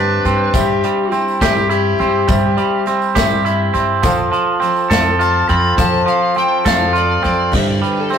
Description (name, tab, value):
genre	folk rock and heartland rock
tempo	69 BPM (dotted quarters)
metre	6/8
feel	straight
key	unclear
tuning	A4 = 444 Hz
part	overdriven slide guitar	second line	0.0-8.2 s	E4 to B5	-20 LUFS	left 9 dB	none
part	picked steel-string acoustic guitar	accompaniment	0.0-8.2 s	G2 to A4	-25 LUFS	left 5 dB	none
part	warm grand piano	accompaniment	0.0-8.2 s	C4 to F5	-26 LUFS	left 6 dB	none
part	twangy electric guitar	riff	0.0-8.2 s	G2 to A4	-16 LUFS	right 4 dB	none
part	upright bass	bass	0.0-7.8 s	F2 to G2	-20 LUFS	equal	none
part	soft brush drum kit	drums	0.2-8.2 s	crash cymbal, hi-hat, kick drum, snare drum	-20 LUFS	equal	none
part	tambourine	percussion	0.5-7.3 s	none	-34 LUFS	left 6 dB	none
room	moderate small room reverb, RT60 0.6 s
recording	rough rehearsal-room recording, warm saturation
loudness	-13 LUFS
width	side -8 dB against mid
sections	0.0-7.5 A section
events	electric slide guitar solo 0.0-7.5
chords	0.0 Gsus4; 0.5 C/G; 4.0 F; 7.5 Gsus4